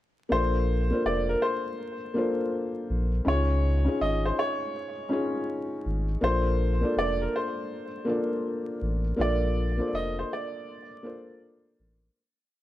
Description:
lo-fi hip hop; 81 BPM; 4/4; swing 63% on 16ths; Bb major; A4 = 441 Hz
bright upright piano; melody; 0.3-11.4 s; Bb4 to Eb5; -30 LUFS; equal; low-pass filter, analog delay
felt-muted upright piano; accompaniment; 0.3-12.2 s; Bb3 to D5; -29 LUFS; left 1 dB; cassette tape, low-pass filter
sub bass with octave; bass; 0.3-12.1 s; F1 to Db2; -26 LUFS; equal
light reverb, studio reverb; dark, warm production, vinyl crackle; -25 LUFS; side -14 dB against mid
0.3-12.2 A section
fade-out 9.2-12.2
0.3 Bbmaj9; 3.3 Dbadd9; 6.2 Bbmaj9

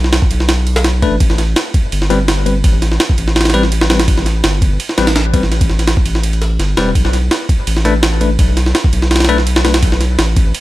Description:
drum and bass, jungle; 167 BPM; 4/4; swing 53% on 16ths; A4 = 440 Hz
saturated sub bass; bass; 0.0-10.5 s; E1 to B1; -15 LUFS; equal
jungle sampler-style drum kit; drums; 0.0-10.6 s; kick drum, ride cymbal, snare drum; -14 LUFS; equal; overdrive, studio reverb
bell-like tine electric piano; stabs; 1.0-9.7 s; G3 to B4; -19 LUFS; left 4 dB; fast stereo tremolo, low-pass filter, dub echo
little or no reverb; -11 LUFS; side -17 dB against mid
0.0-10.6 A section
filter sweep on tine electric piano 0.0-10.6
0.0 B7(no3); 1.2 A7(no3); 7.0 B7(no3)

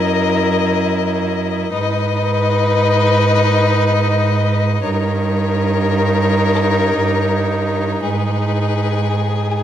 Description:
classical, slow romantic movement for string quartet; free time; G# minor; A4 = 440 Hz
rich violin; melody; 0.0-9.6 s; B4 to D#5; -23 LUFS; left 11 dB
dark violin; second line; 0.0-9.6 s; G#4 to B4; -19 LUFS; left 3 dB
rich viola; accompaniment; 0.0-9.6 s; D#4 to E4; -23 LUFS; right 1 dB
warm cello; bass; 0.0-9.6 s; F#2 to G#2; -18 LUFS; right 3 dB
wet recital hall reverb, RT60 1.6 s; -14 LUFS; side -10 dB against mid
0.0-9.6 A section
0.0 F#6; 1.7 G#m; 4.8 D#7/G; 8.0 G#m

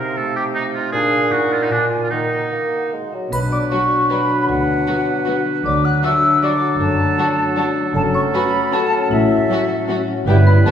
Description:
cinematic, playful, whimsical film cue; 155 BPM; 3/4; straight; Eb minor, B minor from 3.3 s; A4 = 440 Hz
clear clarinet; second line; 0.0-10.7 s; C#4 to F4; -26 LUFS; equal
clear oboe; second line; 0.0-10.7 s; D4 to B4; -23 LUFS; right 3 dB
concert flute; second line; 0.0-10.7 s; E5 to F#6; -21 LUFS; left 1 dB
mellow bassoon; accompaniment; 0.0-10.7 s; Bb2 to Bb3; -25 LUFS; right 2 dB
concert harp; arpeggios; 0.0-10.7 s; F#2 to D5; -26 LUFS; left 3 dB
marimba with medium hard mallets; melody; 3.3-10.7 s; E4 to F#5; -25 LUFS; left 5 dB
mellow French horn section; sustained chords; 3.3-10.7 s; B3 to F#4; -25 LUFS; left 5 dB
rich studio double bass section; bass; 3.3-10.7 s; F#1 to D2; -24 LUFS; right 2 dB
warm studio cello section; bass; 3.3-10.7 s; F#2 to D3; -20 LUFS; right 2 dB
triangle; percussion; 3.3-4.1 s; -39 LUFS; left 1 dB
rich studio violin section; melody; 3.7-10.7 s; E4 to F#4; -30 LUFS; left 4 dB
clear studio violin section; second line; 3.7-10.7 s; B3 to D4; -33 LUFS; left 1 dB
clear studio viola section; accompaniment; 3.7-10.7 s; F#3 to B3; -31 LUFS; equal
wet recital hall reverb, RT60 1.5 s; recorded in a church or concert hall; -15 LUFS; side -9 dB against mid
0.0-3.3 A section; 3.3-10.7 B section
0.0 F7/C; 0.9 Bb; 1.3 Ebm/Bb; 1.7 Bb7; 2.1 Ebm; 3.3 Bm; 4.5 Bm/D; 5.6 D; 6.8 D/F#; 8.0 F#m; 9.1 F#m/A; 10.3 Em/G

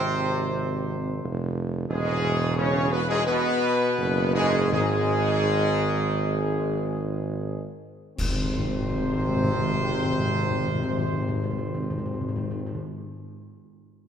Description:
classical, ceremonial fanfare; 59-93 BPM; 4/4; straight; Ab major; A4 = 440 Hz
dark trumpet section; melody; 0.0-12.8 s; Ab4 to Db5; -30 LUFS; equal
dark trombone section; sustained chords; 0.0-12.8 s; G#2 to Db3; -31 LUFS; right 2 dB
mellow French horn section; sustained chords; 0.0-12.8 s; G#3 to Db4; -30 LUFS; left 4 dB
mellow tuba; bass; 0.0-12.8 s; E1 to Ab1; -27 LUFS; right 3 dB
timpani; percussion; 4.7-12.8 s; Ab2; -30 LUFS; left 2 dB
clash cymbals and concert bass drum; percussion; 8.2-10.1 s; -32 LUFS; left 1 dB
wet scoring stage reverb, RT60 2.1 s; -23 LUFS; side -8 dB against mid
0.0-8.2 A section; 8.2-12.1 B section
slowing down 0.6-8.2; band accent 8.2-9.2
0.0 Ab; 1.9 E; 4.7 N.C.; 8.2 Ab

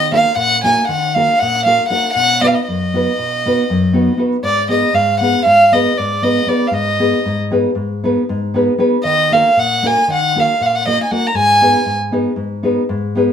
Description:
balkan folk; 235 BPM (eighths); 9/8; straight; Ab dorian sharp4; A4 = 436 Hz
warm violin; melody; 0.0-11.9 s; D5 to Bb5; -13 LUFS; right 1 dB
nylon-string guitar; accompaniment; 0.0-13.3 s; F#2 to B4; -16 LUFS; left 1 dB
wet studio reverb, RT60 0.7 s; band playing live in one room; -12 LUFS; side -8 dB against mid
0.0-13.3 A section
0.0 Ebm; 2.1 B; 4.4 Abm; 9.0 Ebm; 11.3 Abm

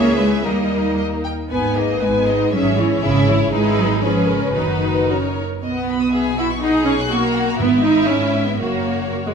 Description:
quick classical-period movement for symphony orchestra; 110-124 BPM; 2/4; rubato; B major from 3.5 s; A4 = 444 Hz
warm studio violin section; melody; 0.0-9.3 s; B4 to F#6; -26 LUFS; left 5 dB
rich studio violin section; second line; 0.0-9.3 s; A#3 to G#4; -25 LUFS; left 3 dB
rich studio viola section; accompaniment; 0.0-9.3 s; G#3 to C#5; -20 LUFS; right 2 dB
dark French horn section; sustained chords; 0.0-5.4 s; C#4 to B4; -23 LUFS; left 5 dB
rich studio double bass section; bass; 0.0-9.3 s; F#1 to D#2; -24 LUFS; right 4 dB
warm studio cello section; bass; 0.0-9.3 s; F#2 to B3; -23 LUFS; right 1 dB
timpani; percussion; 7.6-8.3 s; G#2; -27 LUFS; equal
moderate scoring stage reverb, RT60 2.0 s; minimal, uncompressed stereo recording; -16 LUFS; side -6 dB against mid
0.0-5.6 A section; 5.6-9.3 B section
0.5 D#; 1.5 G#m; 2.5 C#m/G#; 3.5 E/G#; 4.0 C#7/G#; 4.6 B/F#; 5.1 F#; 5.6 B; 6.1 C#m7/B; 6.6 F#/B; 7.6 E/G#; 8.6 F#

